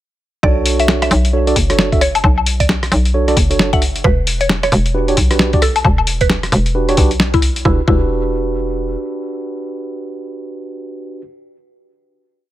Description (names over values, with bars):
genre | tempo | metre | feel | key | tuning
UK garage, two-step garage | 133 BPM | 4/4 | swing 61% on 16ths | E dorian | A4 = 441 Hz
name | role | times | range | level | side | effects
mallet-like synth pluck | melody | 0.4-11.2 s | E4 to F#5 | -21 LUFS | equal | chorus, dub echo
mellow tine electric piano | stabs | 0.4-11.2 s | D4 to E5 | -20 LUFS | right 2 dB | dub echo
hollow knocking FM bass | bass | 0.4-9.0 s | E1 to B1 | -17 LUFS | equal | none
electronic kick drum | drums | 0.4-8.0 s | none | -16 LUFS | equal | none
boom bap sampler-style drum kit | drums | 0.7-7.6 s | hi-hat, rim click, snare drum, woodblock | -17 LUFS | left 2 dB | none
room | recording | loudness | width
little or no reverb | none | -12 LUFS | side -14 dB against mid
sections
0.4-7.7 drop; 7.7-11.3 final chord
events
drop 0.4-7.7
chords
0.4 Bm7; 4.0 Em9